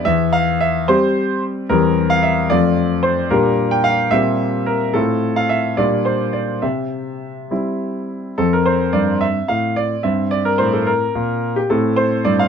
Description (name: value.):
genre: classical-period piano sonatina.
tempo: 72 BPM (dotted quarters).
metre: 6/8.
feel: rubato.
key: F major.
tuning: A4 = 440 Hz.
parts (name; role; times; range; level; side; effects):
clear concert grand piano; solo; 0.0-12.5 s; E2 to G5; -15 LUFS; equal; none.
room: moderate studio ambience, RT60 0.5 s.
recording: none.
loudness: -15 LUFS.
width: side -7 dB against mid.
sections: 0.0-8.4 A section; 8.4-12.5 B section.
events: none.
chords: 0.1 C/E; 2.5 F; 3.3 Gm/Bb; 4.1 C7/Bb; 4.9 F/A; 5.8 Gm7/Bb; 6.6 C; 8.4 F; 10.0 C5/G; 11.7 F69 (rootless).